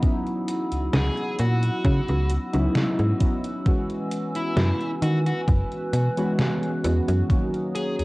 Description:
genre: vaporwave.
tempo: 66 BPM.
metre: 4/4.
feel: straight.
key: C# dorian.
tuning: A4 = 440 Hz.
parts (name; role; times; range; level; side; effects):
warbly lo-fi synth keys; accompaniment; 0.0-8.0 s; D#3 to F#4; -27 LUFS; equal; lush chorus, tape echo.
warbly tape-like pad; sustained chords; 0.0-8.0 s; F#4 to F#6; -33 LUFS; equal; chorus, built-in reverb.
detuned 8-bit digital drum machine; drums; 0.0-8.0 s; hi-hat, snare drum; -28 LUFS; equal; cassette tape.
electronic kick drum; drums; 0.0-7.5 s; none; -22 LUFS; equal; cassette tape.
slap-like FM bass; bass; 0.7-8.0 s; F#1 to D#3; -22 LUFS; equal; tube saturation.
dark smooth lead guitar; melody; 0.9-8.0 s; E4 to G#4; -32 LUFS; equal; overdrive, cassette tape, tape echo.
room: light reverb.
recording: home recording on cassette.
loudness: -21 LUFS.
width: side -21 dB against mid.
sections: 0.0-8.0 A section.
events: none.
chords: 0.0 C#m11; 3.7 F#9sus4; 7.3 D#m7.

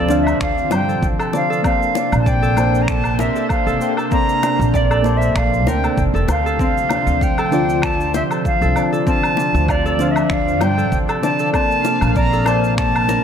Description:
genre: sunset chillout.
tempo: 97 BPM.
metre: 4/4.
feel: swing 55% on 16ths.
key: D minor.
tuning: A4 = 437 Hz.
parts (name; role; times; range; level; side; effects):
silver concert flute; melody; 0.0-13.2 s; D5 to Bb5; -20 LUFS; equal; digital delay.
mellow FM electric piano; accompaniment; 0.0-13.2 s; D3 to A5; -24 LUFS; moving between left 4 dB and right 5 dB; chorus, tremolo, auto-pan, digital delay.
lush unison pad; sustained chords; 0.0-13.2 s; C3 to F5; -23 LUFS; right 1 dB; chorus.
Celtic harp; arpeggios; 0.0-13.2 s; C4 to F5; -24 LUFS; right 1 dB; digital delay.
upright bass; bass; 0.0-13.2 s; F1 to G2; -20 LUFS; equal; none.
cabasa, woodblock and finger snaps; drums; 0.1-13.2 s; none; -27 LUFS; left 1 dB; none.
bongos; percussion; 0.1-13.2 s; none; -27 LUFS; left 8 dB; none.
electronic kick drum; drums; 0.4-12.9 s; none; -21 LUFS; equal; none.
room: light reverb.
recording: none.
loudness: -15 LUFS.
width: side -8 dB against mid.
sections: 0.0-13.2 A section.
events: none.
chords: 0.0 Dm7; 1.6 Bbmaj9; 6.6 Dm7; 11.5 Bbmaj9.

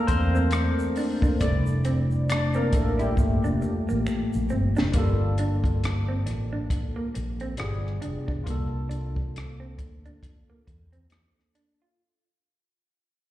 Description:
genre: R&B, neo-soul.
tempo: 68 BPM.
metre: 4/4.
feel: swing 60% on 16ths.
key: G dorian.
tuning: A4 = 440 Hz.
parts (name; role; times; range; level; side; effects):
electric guitar through a small old amp; second line; 0.0-11.9 s; A3 to F4; -33 LUFS; right 3 dB; slapback echo.
barky tine electric piano; accompaniment; 0.0-12.0 s; G3 to D5; -28 LUFS; left 2 dB; overdrive, lush chorus, slapback echo.
fretless electric bass; bass; 0.1-11.1 s; F1 to E2; -26 LUFS; equal; none.
compact cocktail drum kit; drums; 0.1-11.8 s; hi-hat, kick drum, rim click, snare drum; -27 LUFS; equal; none.
egg shaker and finger snaps; percussion; 0.1-4.9 s; none; -45 LUFS; right 2 dB; slapback echo.
room: light reverb, small room reverb.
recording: live gig heard through the venue's PA, recital hall reverb.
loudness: -23 LUFS.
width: side -14 dB against mid.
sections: 0.0-4.9 A section; 4.9-12.0 B section.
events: tine electric piano solo 0.0-4.9; drum fill 3.2-4.9; fade-out 4.9-12.0.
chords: 0.0 C13; 1.4 Fmaj13; 3.2 Gm9; 7.6 G7b9; 8.5 C13sus4.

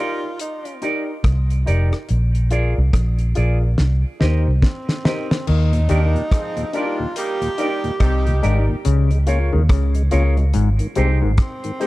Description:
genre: roots reggae.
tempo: 71 BPM.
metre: 4/4.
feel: swing 61% on 16ths.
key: Eb major.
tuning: A4 = 439 Hz.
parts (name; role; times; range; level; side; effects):
clear tenor saxophone; melody; 0.0-11.9 s; C4 to G4; -28 LUFS; right 2 dB; tape echo.
electric guitar with an envelope filter; accompaniment; 0.0-11.9 s; Eb4 to Eb5; -31 LUFS; right 5 dB; tape echo.
dark upright piano; stabs; 0.0-11.9 s; Eb4 to D5; -28 LUFS; left 2 dB; none.
damped 70s drum kit; drums; 0.4-11.9 s; crash cymbal, hi-hat, kick drum, rim click, snare drum; -20 LUFS; equal; none.
vintage muted fingered electric bass; bass; 1.2-11.4 s; F1 to Eb2; -16 LUFS; equal; none.
overdriven clav; riff; 5.5-11.3 s; Ab2 to Eb3; -25 LUFS; left 5 dB; none.
tonewheel organ; accompaniment; 5.7-11.9 s; Eb2 to G4; -28 LUFS; left 1 dB; slow rotary speaker.
warm horn section; second line; 5.9-8.6 s; F3 to G4; -29 LUFS; right 2 dB; tape echo.
room: studio reverb.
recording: dark, warm production.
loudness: -16 LUFS.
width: side -18 dB against mid.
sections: 0.0-5.5 A section; 5.5-11.9 B section.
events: drum fill 3.8-5.5.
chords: 0.0 Ebmaj7; 2.1 Bb7; 3.8 Cm7; 5.5 Ebmaj7; 8.9 Db6; 10.5 Abmaj7.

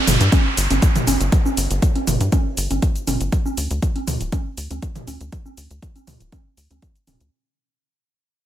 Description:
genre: progressive house.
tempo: 120 BPM.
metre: 4/4.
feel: straight.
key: unclear.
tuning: A4 = 440 Hz.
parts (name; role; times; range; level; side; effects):
downlifter; sound effects; 0.0-3.3 s; none; -26 LUFS; right 1 dB; none.
tight sequencer bass; bass; 0.1-7.3 s; D1 to G2; -22 LUFS; equal; tube saturation, sidechain pumping.
electronic hi-hat and cabasa; drums; 0.1-7.3 s; none; -26 LUFS; left 1 dB; sidechain pumping on hats, studio reverb, sidechain pumping on perc, sidechain pumping on cymbals, sidechain pumping on toms.
electronic toms and congas; percussion; 0.1-7.2 s; none; -24 LUFS; right 2 dB; sidechain pumping on perc, studio reverb, sidechain pumping on snare, sidechain pumping on toms.
electronic kick drum; drums; 0.3-6.9 s; none; -18 LUFS; equal; overdrive, studio reverb.
room: digital ambience.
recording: none.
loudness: -17 LUFS.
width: side -12 dB against mid.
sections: 0.0-7.3 A section.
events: fade-out 0.0-7.3.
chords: none.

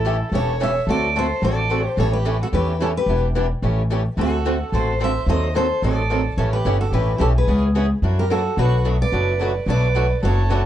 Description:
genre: acoustic string swing (jazz manouche).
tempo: 218 BPM.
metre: 4/4.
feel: swing 57% on 8ths.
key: A mixolydian.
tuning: A4 = 440 Hz.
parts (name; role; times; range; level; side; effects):
picked steel-string acoustic guitar; melody; 0.0-10.7 s; G4 to E5; -24 LUFS; equal; none.
dark violin; second line; 0.0-10.7 s; E4 to C#5; -28 LUFS; right 4 dB; tape echo.
picked swing-style acoustic guitar; accompaniment; 0.0-10.6 s; B2 to A4; -27 LUFS; left 4 dB; none.
picked swing-style acoustic guitar; accompaniment; 0.0-10.6 s; B2 to B4; -28 LUFS; right 6 dB; none.
upright bass; bass; 0.0-10.7 s; E1 to F#2; -20 LUFS; equal; none.
room: light reverb.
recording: dark, warm production, nothing above 10.6 kHz.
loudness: -17 LUFS.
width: side -11 dB against mid.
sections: 0.0-10.7 A section.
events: none.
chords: 0.0 A7; 0.9 D7; 2.0 A7; 3.1 Em7; 3.6 A7; 4.2 D7; 5.3 D#dim7; 6.4 A7; 7.5 C#m7; 8.0 F#7alt; 8.6 Bm7.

